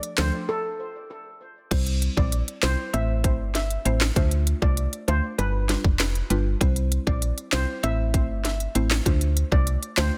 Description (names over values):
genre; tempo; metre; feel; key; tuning
dancehall; 98 BPM; 4/4; straight; D minor; A4 = 440 Hz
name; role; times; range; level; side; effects
island pop drum kit; drums; 0.0-10.1 s; crash cymbal, handclaps, hi-hat, kick drum, snare drum; -26 LUFS; equal; none
steel pan; melody; 0.2-10.1 s; A4 to E5; -34 LUFS; equal; digital delay
mallet-like synth pluck; accompaniment; 0.2-10.1 s; F3 to C5; -33 LUFS; equal; chorus, phaser, sidechain pumping
woody FM bass; bass; 0.2-10.1 s; F1 to D2; -27 LUFS; equal; none
room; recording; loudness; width
digital ambience; dense, heavily limited modern master; -24 LUFS; mono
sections
0.0-1.7 A section; 1.7-10.2 B section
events
break 0.5-1.7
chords
0.0 Dm; 1.7 C; 2.9 Am; 4.2 Dm7; 5.4 G7; 6.6 C; 7.8 Am; 9.1 Dm7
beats
0.49 1.10 | 1.71 2.33 2.94 3.55 | 4.16 4.78 5.39 6.00 | 6.61 7.22 7.84 8.45 | 9.06 9.67